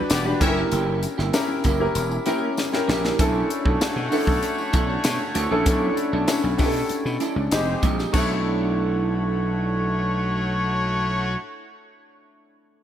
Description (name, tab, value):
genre	polished 1980s jazz-funk pop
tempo	97 BPM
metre	4/4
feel	straight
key	B minor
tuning	A4 = 440 Hz
part	warm grand piano	accompaniment	0.0-12.8 s	Ab3 to C#5	-25 LUFS	left 2 dB	analog chorus
part	warm horn section	second line	0.1-11.3 s	Ab3 to E5	-28 LUFS	left 1 dB	none
part	electric guitar through a small old amp	riff	0.1-11.7 s	Ab3 to A4	-29 LUFS	right 7 dB	lush chorus
part	gritty slap bass	bass	0.1-11.3 s	E1 to B2	-26 LUFS	equal	overdrive
part	crisp fusion drum kit	drums	0.1-8.3 s	crash cymbal, hi-hat, kick drum, snare drum	-24 LUFS	equal	gated reverb
part	tambourine	percussion	0.1-8.4 s	none	-40 LUFS	left 6 dB	none
room	light reverb, small room ambience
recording	bright 1980s-style digital production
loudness	-20 LUFS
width	side -10 dB against mid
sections	0.0-3.2 A section; 3.2-8.1 B section; 8.1-10.6 C section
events	drum fill 2.6-3.2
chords	0.4 F#7b9; 3.2 Bm11; 7.5 Fm9; 8.1 Bm11